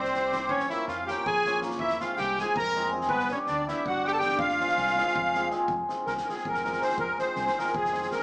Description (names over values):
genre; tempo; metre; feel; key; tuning
balkan folk, Balkan wedding band; 324 BPM (eighths); 7/8; straight; F harmonic minor; A4 = 441 Hz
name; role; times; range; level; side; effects
musette accordion; melody; 0.0-8.2 s; Ab4 to Bb5; -28 LUFS; equal; none
bright trumpet; second line; 0.0-5.5 s; B3 to Bb4; -30 LUFS; equal; none
cimbalom; accompaniment; 0.0-8.2 s; G3 to Bb4; -30 LUFS; equal; none
fingered electric bass; bass; 0.0-8.1 s; F1 to F2; -42 LUFS; equal; none
loose indie drum kit; percussion; 0.0-8.2 s; kick drum, snare drum; -40 LUFS; equal; none
room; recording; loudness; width
wet large studio reverb, RT60 1.0 s; band playing live in one room, small speaker sound; -25 LUFS; side -28 dB against mid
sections
0.0-5.7 A section; 5.7-8.2 B section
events
accordion solo 5.7-8.2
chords
0.5 Bbm; 1.8 Fm; 3.1 G; 4.4 Fm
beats
0.12 0.30 | 0.49 0.68 0.86 1.05 1.23 1.42 1.61 | 1.79 1.98 2.16 2.35 2.54 2.72 2.91 | 3.09 3.28 3.46 3.65 3.83 4.02 4.21 | 4.39 4.58 4.76 4.95 5.13 5.32 5.50 | 5.69 5.87 6.06 6.25 6.43 6.62 6.80 | 6.99 7.17 7.36 7.54 7.73 7.91 8.10